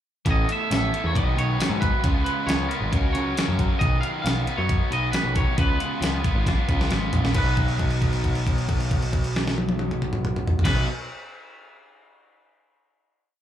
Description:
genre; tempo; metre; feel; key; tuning
indie rock; 135 BPM; 4/4; straight; B lydian; A4 = 440 Hz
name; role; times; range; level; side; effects
twangy electric guitar; melody; 0.3-10.8 s; A#4 to E#5; -29 LUFS; right 1 dB; slapback echo, tape echo
crunchy overdriven guitar; riff; 0.3-10.9 s; B2 to B4; -28 LUFS; equal; slapback echo
growling picked electric bass; bass; 0.3-10.8 s; G#1 to G#2; -25 LUFS; equal; overdrive
crisp 8-bit digital drum machine; drums; 0.3-10.8 s; crash cymbal, hi-hat, kick drum, snare drum, tambourine, toms; -24 LUFS; equal; none
room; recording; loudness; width
little or no reverb; live gig heard through the venue's PA, club ambience; -21 LUFS; side -11 dB against mid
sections
0.3-7.4 pre-chorus; 7.4-10.9 final chord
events
drum fill 6.5-7.4; held note 7.4-10.6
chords
0.3 Asus2; 1.1 B6; 2.0 C#7; 2.9 F#/C#; 3.8 B; 5.6 C#7; 7.4 B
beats
| 0.26 0.70 1.15 1.59 | 2.04 2.48 2.92 3.37 | 3.81 4.25 4.69 5.14 | 5.58 6.02 6.46 6.91 | 7.35 7.80 8.24 8.69 | 9.13 9.58 10.02 10.47

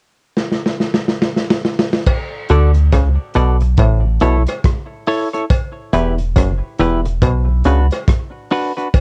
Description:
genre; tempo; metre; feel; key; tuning
roots reggae; 70 BPM; 4/4; swing 61% on 16ths; D major; A4 = 439 Hz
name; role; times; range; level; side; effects
crunchy breakbeat drum kit; drums; 0.4-9.0 s; crash cymbal, hi-hat, kick drum, rim click, snare drum; -18 LUFS; equal; none
cowbell; percussion; 2.1-9.0 s; none; -29 LUFS; equal; none
semi-hollow electric guitar; accompaniment; 2.5-8.9 s; D4 to D5; -21 LUFS; equal; subtle chorus
muted clav; riff; 2.5-7.8 s; E2 to D3; -20 LUFS; equal; none
warm sub bass; bass; 2.5-7.9 s; E1 to D2; -17 LUFS; equal; none
room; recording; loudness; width
light reverb; cassette tape; -16 LUFS; mono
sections
0.0-2.1 A section; 2.1-9.0 B section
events
drum fill 0.4-2.1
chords
0.0 N.C.; 2.1 D; 3.8 A; 5.5 Em; 7.2 Bm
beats
0.36 1.21 | 2.07 2.93 3.79 4.65 | 5.50 6.36 7.22 8.08 | 8.94

